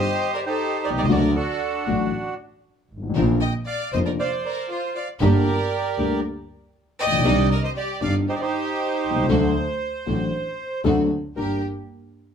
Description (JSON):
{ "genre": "tango", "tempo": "117 BPM", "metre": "4/4", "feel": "rubato", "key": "G minor", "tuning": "A4 = 440 Hz", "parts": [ { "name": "bandoneon", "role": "melody", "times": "0.0-11.6 s", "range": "D4 to G5", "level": "-25 LUFS", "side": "right 3 dB", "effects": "plate reverb" }, { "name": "clear studio violin section", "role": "second line", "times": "0.0-11.6 s", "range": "F4 to Eb5", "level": "-30 LUFS", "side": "left 4 dB", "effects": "none" }, { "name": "dark concert grand piano", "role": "accompaniment", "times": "0.0-11.6 s", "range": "F1 to Bb4", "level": "-22 LUFS", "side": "left 3 dB", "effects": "none" }, { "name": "bright chamber string section", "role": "stabs", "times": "0.0-11.6 s", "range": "A3 to Bb4", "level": "-32 LUFS", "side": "right 3 dB", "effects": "none" }, { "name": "rich double bass", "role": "bass", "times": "0.0-11.6 s", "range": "F1 to D2", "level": "-25 LUFS", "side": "right 2 dB", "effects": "none" } ], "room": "wet club reverb, RT60 0.6 s", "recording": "heard from further back in the room", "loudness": "-20 LUFS", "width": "side -7 dB against mid", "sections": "0.0-11.4 A section", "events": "none", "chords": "0.0 Cm; 1.1 D; 3.2 Bbadd9; 5.2 Gm; 7.3 Cmadd9; 9.3 D; 10.8 D7; 11.4 Gm", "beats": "0.07 0.58 | 1.09 1.61 2.12 2.64 | 3.16 3.67 4.19 4.70 | 5.21 5.72 6.24 6.75 | 7.25 7.76 8.28 8.79 | 9.30 9.81 10.33 10.85 | 11.37" }